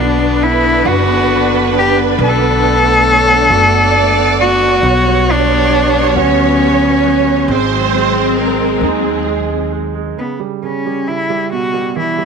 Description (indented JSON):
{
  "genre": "six-eight pop ballad",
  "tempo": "45 BPM (dotted quarters)",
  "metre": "6/8",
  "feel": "straight",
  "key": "B minor",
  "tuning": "A4 = 440 Hz",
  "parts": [
    { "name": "warm cello", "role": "melody", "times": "0.0-12.2 s", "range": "B3 to A4", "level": "-13 LUFS", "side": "left 2 dB", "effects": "tape echo" },
    { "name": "dark symphonic violin section", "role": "second line", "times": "0.0-9.7 s", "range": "G#4 to D5", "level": "-17 LUFS", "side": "right 13 dB", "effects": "none" },
    { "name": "clear concert grand piano", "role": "accompaniment", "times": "0.0-12.2 s", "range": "B2 to F#5", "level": "-20 LUFS", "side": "right 14 dB", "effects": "none" },
    { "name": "rich studio string section", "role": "sustained chords", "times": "0.0-10.1 s", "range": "D3 to D4", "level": "-19 LUFS", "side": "left 16 dB", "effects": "none" },
    { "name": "upright bass", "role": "bass", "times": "0.0-10.1 s", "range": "F#1 to D#2", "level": "-18 LUFS", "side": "left 1 dB", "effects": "none" }
  ],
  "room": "light reverb, studio reverb",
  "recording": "1960s-style stereo with parts hard left and right",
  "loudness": "-10 LUFS",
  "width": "side -6 dB against mid",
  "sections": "0.0-10.2 A section; 10.2-12.2 B section",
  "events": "none",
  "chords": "0.0 Bm; 4.8 Gmaj7/B; 7.5 G#7; 10.2 C#m7b5"
}